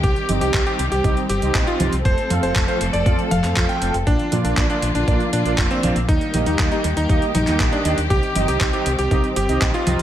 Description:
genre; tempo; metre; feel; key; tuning
italo disco; 119 BPM; 4/4; straight; unclear; A4 = 440 Hz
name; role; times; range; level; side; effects
bright electric grand piano; melody; 0.0-10.0 s; C4 to G5; -24 LUFS; equal; tape echo
warm symphonic string section; sustained chords; 0.0-10.0 s; D3 to A4; -26 LUFS; left 2 dB; none
fingered electric bass with an envelope filter; bass; 0.0-10.0 s; F1 to Bb2; -23 LUFS; equal; none
dusty soul sampler-style drum kit; drums; 0.0-10.0 s; congas, handclaps, hi-hat; -25 LUFS; right 1 dB; overdrive, gated reverb
electronic kick drum; drums; 0.0-9.7 s; none; -20 LUFS; equal; overdrive
analog synth brass; stabs; 0.3-10.0 s; Bb3 to F5; -26 LUFS; right 4 dB; chorus
room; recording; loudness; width
light reverb, digital ambience; none; -17 LUFS; side -11 dB against mid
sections
0.0-10.0 A section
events
none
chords
0.0 Cm; 2.1 F; 4.1 Bb; 6.1 Eb; 8.1 Cm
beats
| 0.04 0.54 1.04 1.55 | 2.05 2.56 3.06 3.56 | 4.07 4.57 5.08 5.58 | 6.09 6.59 7.09 7.60 | 8.10 8.61 9.11 9.62

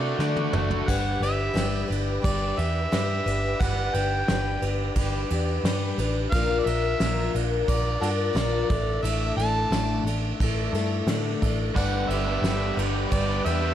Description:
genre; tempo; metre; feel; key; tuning
folk rock and heartland rock; 88 BPM; 4/4; straight; unclear; A4 = 440 Hz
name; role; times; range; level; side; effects
overdriven harmonica; melody; 0.0-13.7 s; F#4 to A5; -30 LUFS; right 1 dB; analog delay
picked plugged-in twelve-string acoustic guitar; accompaniment; 0.0-13.7 s; A2 to B4; -29 LUFS; left 6 dB; none
tonewheel organ; sustained chords; 0.0-13.7 s; F4 to D6; -37 LUFS; right 2 dB; chorus vibrato, slow rotary speaker
raw garage guitar; riff; 0.0-0.9, 11.7-13.7 s; G2 to G4; -30 LUFS; right 2 dB; overdrive, spring reverb
vintage muted picked electric bass; bass; 0.0-13.7 s; F#1 to D3; -27 LUFS; right 1 dB; none
soft brush drum kit; drums; 0.2-13.6 s; crash cymbal, kick drum, ride cymbal, snare drum, toms; -29 LUFS; right 2 dB; none
room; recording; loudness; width
light reverb, small room ambience; none; -22 LUFS; side -10 dB against mid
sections
0.9-13.7 A section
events
drum fill 0.2-0.9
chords
0.0 D; 0.9 G; 6.3 Bb; 8.7 Asus4; 11.8 G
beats
0.20 | 0.88 1.56 2.24 2.92 | 3.60 4.29 4.96 5.64 | 6.33 7.00 7.68 8.36 | 9.04 9.72 10.40 11.08 | 11.76 12.44 13.12

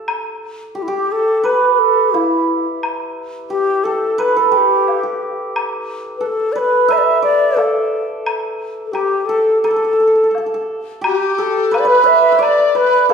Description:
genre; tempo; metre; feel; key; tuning
chinese traditional, Chinese chamber ensemble; 88 BPM; 4/4; rubato; A shang mode; A4 = 440 Hz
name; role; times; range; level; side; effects
hammered dulcimer; second line; 0.0-13.1 s; E4 to E5; -17 LUFS; right 4 dB; none
woodblock; percussion; 0.1-13.1 s; none; -26 LUFS; left 2 dB; none
bright xiao; melody; 0.8-13.1 s; E4 to E5; -16 LUFS; left 2 dB; none
bright reedy large dizi; second line; 11.0-13.1 s; G4 to D5; -20 LUFS; left 5 dB; none
room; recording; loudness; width
wet recital hall reverb, RT60 1.5 s; recorded in a church or concert hall; -13 LUFS; side -6 dB against mid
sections
0.0-11.1 A section; 11.1-13.1 B section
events
none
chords
none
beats
| 0.07 0.76 1.45 2.15 | 2.83 3.51 4.20 4.88 | 5.55 6.23 6.90 7.58 | 8.26 8.94 9.64 10.35 | 11.05 11.74 12.43 13.11

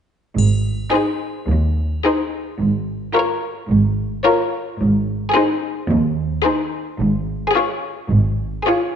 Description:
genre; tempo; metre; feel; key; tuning
cinematic, playful, whimsical film cue; 109 BPM; 4/4; straight; Ab major; A4 = 437 Hz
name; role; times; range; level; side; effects
rich chamber double bass section; bass; 0.4-8.5 s; Ab1 to Eb2; -21 LUFS; right 2 dB; none
rich studio cello section; bass; 0.4-8.5 s; Eb2 to Ab2; -21 LUFS; right 1 dB; none
triangle; percussion; 0.4-1.5 s; none; -35 LUFS; left 2 dB; none
warm studio violin section; melody; 0.9-9.0 s; C5 to Db5; -23 LUFS; left 5 dB; none
rich chamber violin section; second line; 0.9-9.0 s; Ab4 to Bb4; -21 LUFS; left 2 dB; none
clear chamber viola section; accompaniment; 0.9-9.0 s; Eb4 to F4; -22 LUFS; left 1 dB; none
room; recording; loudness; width
moderate scoring stage reverb, RT60 1.5 s; dark, warm production, nothing above 10.9 kHz; -17 LUFS; side -8 dB against mid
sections
0.4-9.0 A section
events
none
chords
0.4 Ab; 2.6 Bbm7/Ab; 4.8 Ab; 7.0 Db/Ab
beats
| 0.38 0.93 1.49 2.04 | 2.59 3.14 3.69 4.24 | 4.79 5.34 5.89 6.45 | 7.00 7.55 8.11 8.66

